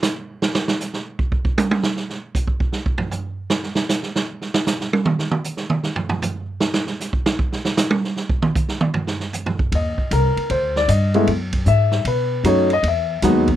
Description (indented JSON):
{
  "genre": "jazz piano trio",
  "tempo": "155 BPM",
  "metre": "4/4",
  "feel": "swing 66% on 8ths",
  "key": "unclear",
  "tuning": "A4 = 440 Hz",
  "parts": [
    { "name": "swinging big-band drum kit", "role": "drums", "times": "0.0-13.5 s", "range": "hi-hat, kick drum, ride cymbal, snare drum, toms", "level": "-21 LUFS", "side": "right 2 dB", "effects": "none" },
    { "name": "upright bass", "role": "bass", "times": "9.7-13.6 s", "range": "C2 to B2", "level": "-20 LUFS", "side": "left 1 dB", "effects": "none" },
    { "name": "warm grand piano", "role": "melody", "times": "9.8-13.5 s", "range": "F#3 to Fb5", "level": "-18 LUFS", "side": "left 2 dB", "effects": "none" }
  ],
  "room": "little or no reverb",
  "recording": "close, detailed microphones",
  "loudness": "-18 LUFS",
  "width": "side -12 dB against mid",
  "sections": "0.0-9.7 A section; 9.7-13.6 B section",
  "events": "drum solo 0.0-9.7",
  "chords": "0.0 N.C.; 9.7 Ebmaj7; 11.3 Gbsus2; 12.1 B9; 12.8 Emaj9"
}